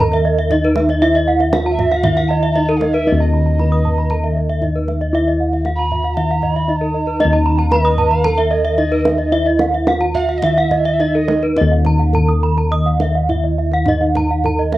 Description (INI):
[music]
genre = Balinese gamelan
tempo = 104-116 BPM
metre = 4/4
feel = straight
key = Eb pelog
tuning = A4 = 439 Hz
[part]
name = gamelan-type bronze metallophone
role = melody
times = 0.0-14.8 s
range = Eb4 to Eb5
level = -21 LUFS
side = right 2 dB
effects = cassette tape
[part]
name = breathy hollow soprano recorder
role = second line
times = 0.0-11.5 s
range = Eb5 to Cb6-37c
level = -24 LUFS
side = right 3 dB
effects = cassette tape, plate reverb
[part]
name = gamelan-type bronze metallophone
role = arpeggios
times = 0.0-14.6 s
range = Bb4-45c to Eb6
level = -19 LUFS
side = left 1 dB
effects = cassette tape, plate reverb
[part]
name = gamelan-type bossed gongs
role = bass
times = 0.0-14.8 s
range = Eb2 to Fb4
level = -17 LUFS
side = left 1 dB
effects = none
[part]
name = kendang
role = percussion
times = 0.1-14.8 s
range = none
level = -25 LUFS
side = right 3 dB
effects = none
[part]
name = gamelan-type bronze metallophone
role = arpeggios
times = 0.2-14.8 s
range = Eb5 to Eb6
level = -22 LUFS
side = right 5 dB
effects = cassette tape, plate reverb
[sound]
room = moderate booth ambience, RT60 0.2 s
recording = home recording on cassette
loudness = -13 LUFS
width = side -16 dB against mid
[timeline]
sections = 0.0-11.6 A section; 11.6-14.8 B section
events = none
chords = none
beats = 0.51 | 1.02 1.54 2.05 2.57 | 3.08 3.60 4.11 4.63 | 5.14 5.66 6.17 6.69 | 7.20 7.72 8.25 8.78 | 9.32 9.87 10.43 10.99 | 11.56 12.14 12.72 13.29 | 13.87 14.45